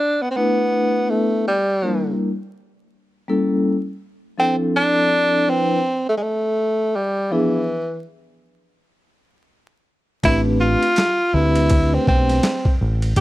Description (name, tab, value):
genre	hip hop, jazz-hop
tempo	82 BPM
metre	4/4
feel	swing 61% on 16ths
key	unclear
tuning	A4 = 440 Hz
part	warm tenor saxophone	melody	0.0-13.2 s	E3 to G4	-18 LUFS	equal	none
part	vibraphone with soft mallets	accompaniment	0.4-12.4 s	F3 to B4	-20 LUFS	left 1 dB	none
part	deep dub picked electric bass	bass	10.2-13.2 s	A1 to D2	-19 LUFS	equal	none
part	boom bap sampler-style drum kit	drums	10.2-13.2 s	hi-hat, kick drum, ride cymbal, snare drum	-20 LUFS	equal	none
room	digital ambience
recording	dry, close 1970s-style studio recording, vinyl crackle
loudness	-17 LUFS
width	side -16 dB against mid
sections	0.0-13.2 A section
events	none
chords	0.0 Asus24; 1.5 Em7b5; 2.9 A7b9; 4.4 Dm9; 7.3 E7b9; 10.2 Am11